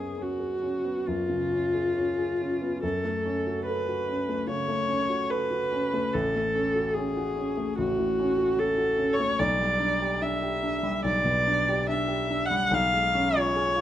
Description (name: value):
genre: classical, romantic duo for viola and grand piano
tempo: 72 BPM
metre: 4/4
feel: rubato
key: F# minor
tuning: A4 = 442 Hz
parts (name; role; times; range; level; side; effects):
- warm viola; melody; 0.0-13.8 s; E#4 to F#5; -26 LUFS; equal; none
- warm grand piano; accompaniment; 0.0-13.8 s; A1 to A4; -29 LUFS; equal; none
room: moderate stone room reverb, RT60 1.4 s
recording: dark, warm production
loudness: -24 LUFS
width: side -12 dB against mid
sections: 0.0-13.8 A section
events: none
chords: 0.0 C#7/F#; 2.8 F#m; 6.1 F#m/A; 9.4 G/B; 12.7 C#7/B